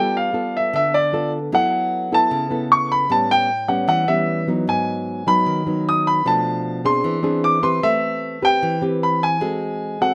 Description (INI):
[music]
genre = bossa nova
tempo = 152 BPM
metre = 4/4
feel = straight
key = unclear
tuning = A4 = 441 Hz
[part]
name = warm grand piano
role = melody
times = 0.0-10.1 s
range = D5 to D#6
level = -21 LUFS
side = equal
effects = none
[part]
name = nylon-string guitar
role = accompaniment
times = 0.0-10.1 s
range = G#2 to B4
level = -24 LUFS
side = equal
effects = none
[sound]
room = little or no reverb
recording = recorded outdoors, with no room sound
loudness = -20 LUFS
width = mono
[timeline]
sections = 0.0-10.1 A section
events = none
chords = 0.0 G9; 1.5 F#m7; 3.1 A9; 4.7 G#m7; 6.3 Bm7b5; 7.0 E7alt; 7.8 Am9; 9.4 G#7b9